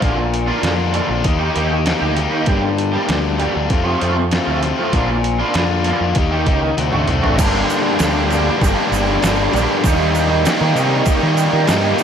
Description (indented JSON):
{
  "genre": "indie rock",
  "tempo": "98 BPM",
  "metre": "4/4",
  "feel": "straight",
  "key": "G minor from 7.4 s",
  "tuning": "A4 = 444 Hz",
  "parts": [
    { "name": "overdriven electric guitar", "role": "riff", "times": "0.0-12.0 s", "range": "G2 to G4", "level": "-20 LUFS", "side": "right 5 dB", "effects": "ensemble chorus, analog delay, slapback echo" },
    { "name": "raw garage guitar", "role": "riff", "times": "0.0-12.0 s", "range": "F2 to G4", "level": "-19 LUFS", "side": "left 6 dB", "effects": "overdrive, slapback echo" },
    { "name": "growling picked electric bass", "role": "bass", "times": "0.0-11.9 s", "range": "G1 to Eb3", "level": "-20 LUFS", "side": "equal", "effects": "overdrive" },
    { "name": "lo-fi sampler-style drum kit", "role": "drums", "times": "0.0-12.0 s", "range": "crash cymbal, hi-hat, kick drum, snare drum, toms", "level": "-21 LUFS", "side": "right 1 dB", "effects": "overdrive" },
    { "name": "egg shaker", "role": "percussion", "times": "7.4-12.0 s", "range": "none", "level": "-34 LUFS", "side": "right 9 dB", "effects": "none" }
  ],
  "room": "moderate lush hall reverb, RT60 3.0 s",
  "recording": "big arena sound",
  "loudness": "-14 LUFS",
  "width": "side -8 dB against mid",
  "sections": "0.0-7.4 A section; 7.4-12.0 B section",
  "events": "drum fill 6.8-7.4",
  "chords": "0.0 Bb; 1.2 Eb; 2.5 Gm; 3.7 F; 4.9 Bb; 6.2 Eb; 6.8 D7; 7.4 Gm; 9.8 Eb",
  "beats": "| 0.01 0.63 1.24 1.86 | 2.47 3.08 3.70 4.31 | 4.93 5.54 6.16 6.77 | 7.39 8.00 8.61 9.23 | 9.84 10.45 11.07 11.68"
}